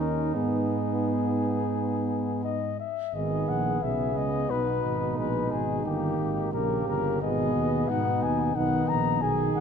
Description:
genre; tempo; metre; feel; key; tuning
classical, brass quintet; 89 BPM; 4/4; rubato; G# minor; A4 = 440 Hz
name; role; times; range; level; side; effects
dark trumpet; melody; 0.0-9.6 s; G4 to A#5; -30 LUFS; left 9 dB; none
mellow flugelhorn; second line; 0.0-9.6 s; D#4 to G#4; -33 LUFS; right 6 dB; none
clear French horn; accompaniment; 0.0-9.6 s; G#3 to D#4; -34 LUFS; left 4 dB; none
warm euphonium; accompaniment; 0.0-9.6 s; B2 to D#4; -31 LUFS; right 3 dB; none
dark tuba; bass; 0.0-9.6 s; G1 to G#2; -31 LUFS; right 3 dB; none
room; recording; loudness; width
wet recital hall reverb, RT60 1.4 s; nothing above 10.8 kHz; -25 LUFS; side -7 dB against mid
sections
0.0-3.1 A section; 3.1-9.6 B section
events
none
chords
0.3 G#m; 5.8 D#/G; 7.2 G#m; 8.6 B

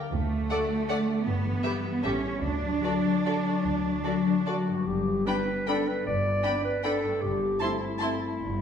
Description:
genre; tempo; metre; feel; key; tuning
classical, orchestral ballroom waltz; 138-170 BPM; 3/4; rubato; D major, G major from 4.9 s; A4 = 439 Hz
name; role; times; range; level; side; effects
concert harp; arpeggios; 0.0-8.6 s; G2 to Bb4; -31 LUFS; left 6 dB; none
rich studio cello section; bass; 0.1-8.6 s; G2 to D4; -31 LUFS; right 4 dB; none
rich studio double bass section; bass; 0.1-8.6 s; G1 to D2; -34 LUFS; right 2 dB; none
clear studio violin section; melody; 0.5-8.1 s; D5 to C6; -38 LUFS; left 2 dB; none
rich studio violin section; second line; 0.5-8.1 s; A4 to A5; -38 LUFS; equal; none
rich studio viola section; accompaniment; 0.5-8.1 s; D4 to A4; -36 LUFS; right 1 dB; none
clear clarinet; second line; 4.5-8.6 s; E4 to D5; -29 LUFS; left 1 dB; none
mellow French horn section; sustained chords; 5.3-8.1 s; A3 to D4; -35 LUFS; left 1 dB; none
room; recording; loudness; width
wet recital hall reverb, RT60 1.5 s; recorded in a church or concert hall; -25 LUFS; side -8 dB against mid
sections
0.0-4.9 A section; 4.9-8.6 B section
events
none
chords
0.1 D; 1.3 Em/G; 2.0 A; 2.4 D; 4.9 G; 7.2 Am7/G

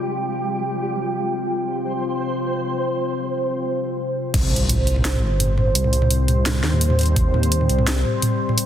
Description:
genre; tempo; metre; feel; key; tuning
half-time drum and bass; 170 BPM; 4/4; half-time; C minor; A4 = 441 Hz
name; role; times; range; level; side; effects
deep dark ambient pad; sustained chords; 0.0-8.7 s; G3 to G5; -24 LUFS; left 1 dB; chorus, built-in reverb, vintage 12-bit sampler grit, sidechain pumping
flickering grainy texture; texture; 0.0-3.7 s; G3 to C5; -27 LUFS; right 2 dB; built-in reverb
dark detuned saw bass; bass; 4.3-8.0 s; G1 to Eb2; -19 LUFS; equal; tube saturation
drum and bass drum kit; drums; 4.3-8.6 s; crash cymbal, hi-hat, snare drum, toms; -22 LUFS; equal; overdrive
electronic kick drum; drums; 4.3-4.4, 7.2 s; none; -20 LUFS; equal; overdrive
impact; sound effects; 4.3-5.8 s; none; -28 LUFS; equal; none
room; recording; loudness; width
light reverb; dense, heavily limited modern master; -18 LUFS; side -10 dB against mid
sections
0.0-4.3 A section; 4.3-8.7 B section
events
drop 4.3-8.7; impact 4.3-5.8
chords
0.0 C5

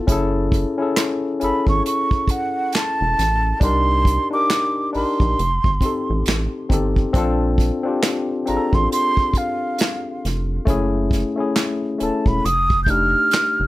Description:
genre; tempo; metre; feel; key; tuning
R&B, neo-soul; 68 BPM; 4/4; swing 59% on 16ths; unclear; A4 = 440 Hz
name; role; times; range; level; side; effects
tine electric piano; accompaniment; 0.0-13.7 s; A3 to Bb4; -22 LUFS; left 3 dB; overdrive
rubbery square bass; bass; 0.1-13.7 s; E1 to C2; -22 LUFS; equal; none
unplugged drum kit; drums; 0.1-13.6 s; handclaps, hi-hat, kick drum, snare drum; -20 LUFS; equal; none
breathy mellow concert flute; melody; 1.4-13.7 s; E#5 to G6; -20 LUFS; right 2 dB; none
room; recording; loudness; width
light reverb; none; -17 LUFS; side -17 dB against mid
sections
0.0-13.7 A section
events
none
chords
0.1 F#m9; 3.6 Cm7; 5.4 F7 (rootless); 7.1 A#maj9; 10.7 F#m7; 12.4 F13

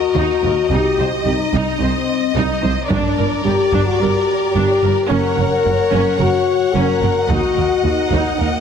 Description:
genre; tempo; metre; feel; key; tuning
cinematic, epic orchestral film score; 110 BPM; 4/4; straight; G harmonic minor; A4 = 439 Hz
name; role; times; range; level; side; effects
warm symphonic violin section; melody; 0.0-8.6 s; D5 to F#5; -25 LUFS; left 3 dB; none
bright symphonic violin section; second line; 0.0-8.6 s; Bb4 to Eb5; -26 LUFS; left 4 dB; none
warm French horn section; sustained chords; 0.0-8.6 s; Bb3 to A#4; -18 LUFS; left 4 dB; none
clear symphonic viola section; accompaniment; 0.2-8.5 s; C#4 to C5; -25 LUFS; right 2 dB; none
rich symphonic cello section; bass; 0.2-8.5 s; C2 to G2; -22 LUFS; right 3 dB; none
rich symphonic double bass section; bass; 0.2-8.5 s; F#1 to Eb2; -22 LUFS; right 4 dB; none
taiko ensemble; drums; 2.9-4.0, 7.3-8.4 s; none; -26 LUFS; equal; none
room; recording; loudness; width
wet scoring stage reverb, RT60 2.0 s; heavily compressed radio sound, multiband compression; -14 LUFS; side -7 dB against mid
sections
0.0-8.6 A section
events
none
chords
0.0 Ebm; 0.7 Cm; 2.9 Gm; 5.1 F#; 7.3 Ebm

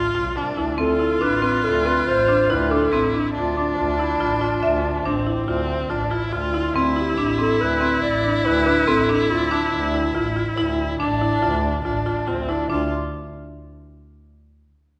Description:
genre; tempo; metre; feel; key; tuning
contemporary instrumental, chamber music in an uneven meter; 141 BPM; 7/4; straight; D dorian; A4 = 440 Hz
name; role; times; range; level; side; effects
rich viola; second line; 0.0-12.9 s; C4 to F4; -26 LUFS; equal; none
buzzing marimba with hard mallets; arpeggios; 0.0-12.9 s; C4 to E5; -26 LUFS; equal; none
rich double bass; bass; 0.0-12.9 s; A1 to D2; -29 LUFS; equal; none
dark clarinet; melody; 0.8-10.2 s; D4 to D5; -25 LUFS; equal; none
room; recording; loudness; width
wet recital hall reverb, RT60 1.5 s; recorded in a church or concert hall; -21 LUFS; mono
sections
0.0-12.7 A section; 12.7-15.0 B section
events
none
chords
0.0 Dm7; 12.7 N.C.

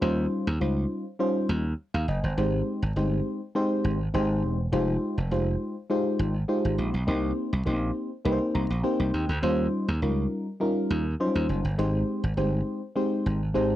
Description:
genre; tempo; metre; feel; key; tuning
early-eighties boogie funk; 102 BPM; 4/4; straight; unclear; A4 = 440 Hz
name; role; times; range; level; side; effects
mellow FM electric piano; accompaniment; 0.0-13.8 s; F3 to Bb5; -27 LUFS; left 1 dB; chorus
slap bass; bass; 0.0-13.8 s; E1 to Eb2; -26 LUFS; right 1 dB; none
room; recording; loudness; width
little or no reverb; dry, close 1970s-style studio recording; -24 LUFS; side -14 dB against mid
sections
0.0-13.8 A section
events
FM electric piano fill 8.3-9.4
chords
0.0 Eb13; 2.4 Abmaj7; 4.7 Fm9; 7.1 Cm7; 9.4 Eb13; 11.8 Abmaj7

